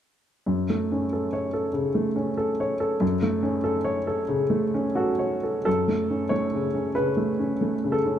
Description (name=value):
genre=neoclassical minimalist piano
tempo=82-98 BPM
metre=4/4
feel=rubato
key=F# minor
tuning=A4 = 440 Hz
part: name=warm upright piano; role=solo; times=0.5-8.2 s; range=F#2 to C#5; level=-22 LUFS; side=equal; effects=none
room=light reverb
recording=close, detailed microphones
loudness=-23 LUFS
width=side -10 dB against mid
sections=0.5-5.7 A section; 5.7-8.2 B section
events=none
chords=0.5 F#m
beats=| 0.47 1.12 1.75 2.38 | 3.02 3.64 4.28 4.95 | 5.66 6.32 6.96 7.61